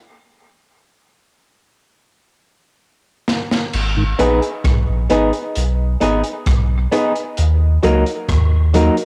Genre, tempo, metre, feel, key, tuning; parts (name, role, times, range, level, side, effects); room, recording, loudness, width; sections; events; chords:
dub reggae; 66 BPM; 4/4; straight; G# minor; A4 = 441 Hz
crunchy breakbeat drum kit; drums; 3.3-9.1 s; crash cymbal, hi-hat, kick drum, rim click, snare drum; -24 LUFS; equal; cassette tape
warm sub bass; bass; 3.7-8.9 s; G#1 to D#2; -18 LUFS; equal; transformer saturation
mellow tonewheel organ; accompaniment; 4.0 s; G#2 to D#3; -22 LUFS; equal; overdrive, slow rotary speaker
electric guitar through a small old amp; accompaniment; 4.2-8.9 s; F#3 to G#4; -23 LUFS; equal; dub echo
warm baby grand piano; stabs; 4.2-9.1 s; D#4 to B4; -23 LUFS; equal; dub echo
light reverb, small room ambience; home recording on cassette; -17 LUFS; mono
0.0-3.7 A section; 3.7-9.1 B section
break 0.0-3.7; drum fill 1.9-3.7
0.1 N.C.; 3.7 G#m; 7.4 D#m